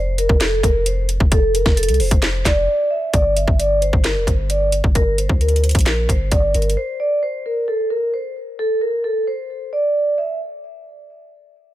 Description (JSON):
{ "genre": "hip hop, trap", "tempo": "132 BPM", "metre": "4/4", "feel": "half-time", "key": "G dorian", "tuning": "A4 = 440 Hz", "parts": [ { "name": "vibraphone with medium mallets", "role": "melody", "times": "0.0-10.4 s", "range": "A4 to E5", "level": "-20 LUFS", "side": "right 1 dB", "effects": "low-pass filter, ping-pong delay" }, { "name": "long sustained 808-style bass", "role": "bass", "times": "0.0-6.8 s", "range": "F1 to D2", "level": "-20 LUFS", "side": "equal", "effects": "none" }, { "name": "trap drum kit", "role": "drums", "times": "0.2-6.8 s", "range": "handclaps, hi-hat, kick drum, snare drum", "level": "-17 LUFS", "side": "equal", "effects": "none" } ], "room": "little or no reverb", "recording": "none", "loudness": "-16 LUFS", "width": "side -14 dB against mid", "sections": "0.0-3.1 A section; 3.1-10.4 B section; 10.4-11.7 C section", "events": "break 2.7-3.1", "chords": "0.0 F5; 3.1 Gm; 6.8 N.C." }